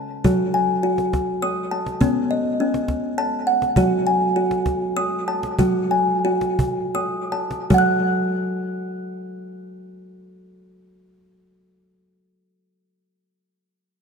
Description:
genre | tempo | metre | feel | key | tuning
world meditative, meditative tuned percussion | 51-68 BPM (dotted quarters) | 6/8 | straight | F# kumoi | A4 = 440 Hz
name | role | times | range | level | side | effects
kalimba | arpeggios | 0.0-12.3 s | C#3 to F#6 | -20 LUFS | equal | diffuse ambient delay
cajon | percussion | 0.2-8.1 s | none | -24 LUFS | right 1 dB | none
room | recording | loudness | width
wet scoring stage reverb, RT60 1.6 s, small room ambience | dark, warm production | -19 LUFS | side -5 dB against mid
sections
0.0-7.7 A section; 7.7-12.4 B section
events
slowing down 3.8-7.7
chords
0.2 F#m; 2.0 B; 3.8 F#m; 7.7 N.C.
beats
| 0.25 1.13 | 2.01 2.90 | 3.78 4.67 | 5.60 6.60 | 7.71 8.88 | 10.06 11.23

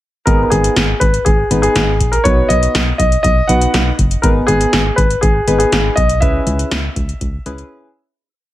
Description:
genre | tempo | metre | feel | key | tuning
synth-pop | 121 BPM | 4/4 | straight | G# minor | A4 = 440 Hz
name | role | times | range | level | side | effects
dark concert grand piano | melody | 0.3-7.7 s | G#4 to F#5 | -16 LUFS | equal | none
soft electric-piano-like synth keys | accompaniment | 0.3-7.9 s | B3 to B4 | -20 LUFS | left 1 dB | chorus
solid FM bass | bass | 0.3-7.6 s | F#1 to C#2 | -17 LUFS | equal | none
electro analog drum machine | drums | 0.3-7.7 s | hi-hat, kick drum, snare drum | -16 LUFS | equal | none
room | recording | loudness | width
little or no reverb | none | -11 LUFS | side -14 dB against mid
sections
0.3-8.2 verse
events
fade-out 6.2-8.2; break 7.7-8.2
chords
0.3 G#m; 2.3 B; 4.2 G#m; 6.2 C#m7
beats
| 0.27 0.77 1.26 1.76 | 2.25 2.75 3.24 3.74 | 4.24 4.73 5.23 5.72 | 6.22 6.71 7.21 7.71

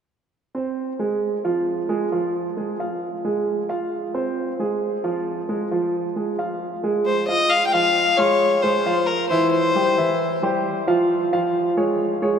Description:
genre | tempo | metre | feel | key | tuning
latin | 134 BPM | 4/4 | straight | F minor, F harmonic minor from 7.5 s | A4 = 439 Hz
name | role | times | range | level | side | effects
warm grand piano | arpeggios | 0.5-12.4 s | E3 to C6 | -21 LUFS | right 2 dB | none
dark fiddle | melody | 7.1-10.4 s | Bb4 to G5 | -20 LUFS | left 3 dB | none
room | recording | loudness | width
wet cathedral reverb, RT60 5.3 s | in a vast, echoing space | -19 LUFS | side -7 dB against mid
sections
0.3-7.5 A section; 7.5-12.4 B section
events
none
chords
0.3 Ab; 1.2 Fm; 9.3 C; 11.1 Db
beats
| 0.32 0.77 1.22 1.67 | 2.12 2.57 3.02 3.46 | 3.91 4.36 4.81 5.26 | 5.71 6.16 6.61 7.06 | 7.51 7.96 8.40 8.85 | 9.30 9.75 10.20 10.65 | 11.10 11.55 12.00

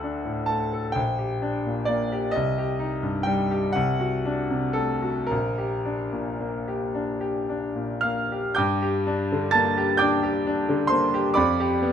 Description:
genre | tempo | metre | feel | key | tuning
classical, romantic nocturne for solo piano | 36-45 BPM (dotted quarters) | 6/8 | rubato | G minor | A4 = 440 Hz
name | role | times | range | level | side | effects
clear grand piano | solo | 0.0-11.9 s | Bb1 to A6 | -22 LUFS | equal | none
room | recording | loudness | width
moderate large studio reverb, RT60 1.1 s | minimal, uncompressed stereo recording | -22 LUFS | side -8 dB against mid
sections
0.0-8.6 A section; 8.6-11.9 B section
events
none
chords
0.0 D; 1.0 Gm/Bb; 2.3 Cm; 3.7 D7/C; 5.3 Gm/Bb; 8.6 Gm; 11.3 G7/F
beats
0.96 | 2.33 3.74 | 5.31 6.95 | 8.57 9.99 | 11.35

